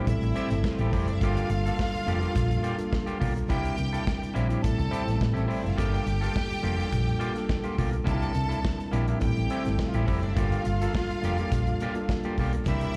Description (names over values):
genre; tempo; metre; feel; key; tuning
disco; 105 BPM; 4/4; straight; G dorian; A4 = 444 Hz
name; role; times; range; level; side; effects
electric guitar at the edge of break-up; accompaniment; 0.0-12.9 s; Bb3 to A4; -37 LUFS; equal; slapback echo
mellow tine electric piano; accompaniment; 0.0-13.0 s; G3 to C5; -34 LUFS; equal; slapback echo
bright studio string section; second line; 0.1-13.0 s; F3 to A5; -38 LUFS; equal; slapback echo
hollow-body short-scale fingered electric bass; bass; 0.1-12.9 s; F1 to A2; -30 LUFS; equal; none
modern studio drum kit; drums; 0.1-13.0 s; hi-hat, kick drum, snare drum; -33 LUFS; equal; none
room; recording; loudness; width
small room ambience; live gig heard through the venue's PA, recital hall reverb; -27 LUFS; mono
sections
0.0-13.0 A section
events
none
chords
0.1 Am7; 1.2 Gm7; 3.5 C7; 4.6 Am7; 5.8 Gm7; 8.1 C7; 9.2 Am7; 10.4 Gm7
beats
0.07 0.65 | 1.22 1.79 2.36 2.93 | 3.50 4.07 4.64 5.21 | 5.78 6.35 6.92 7.50 | 8.07 8.64 9.21 9.79 | 10.36 10.94 11.51 12.09 | 12.66